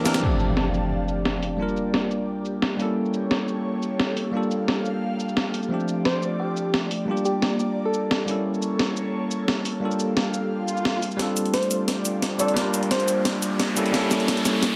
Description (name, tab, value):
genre	liquid drum and bass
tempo	175 BPM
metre	4/4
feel	straight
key	F major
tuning	A4 = 440 Hz
part	bell-like tine electric piano	accompaniment	0.0-14.8 s	E3 to Bb4	-28 LUFS	equal	digital delay
part	airy breathy pad	sustained chords	0.0-14.8 s	A3 to D6	-34 LUFS	equal	chorus, phaser
part	breakbeat sampler-style drum kit	drums	0.1-14.7 s	crash cymbal, hi-hat, shaker, snare drum	-28 LUFS	equal	low-pass filter on hats, studio reverb, low-pass filter on snare, low-pass filter on perc, low-pass filter on cymbals
part	impact, swell and riser	sound effects	0.2-1.6, 10.6-14.8 s	none	-31 LUFS	equal	none
part	soft struck synth lead	melody	6.1-8.2, 11.5-13.3 s	G4 to D5	-31 LUFS	equal	chorus, cassette tape, digital delay
part	electronic kick drum	drums	11.2-14.7 s	none	barely audible	none	none
room	moderate concert hall reverb, RT60 1.8 s, digital ambience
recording	none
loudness	-24 LUFS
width	mono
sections	0.2-11.2 A section; 11.2-14.8 B section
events	break 0.0; drum fill 0.0, 11.2-14.8; impact 0.2-1.6; swell 10.6-11.2; build-up 11.2-14.8; riser 11.2-14.8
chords	0.2 F69; 1.6 Bb6; 2.8 A7b9; 4.3 Gm9; 5.7 F69; 7.1 Bb6; 8.3 A7b9; 9.8 Gm9; 11.2 F69; 12.6 Bb6; 13.8 A7b9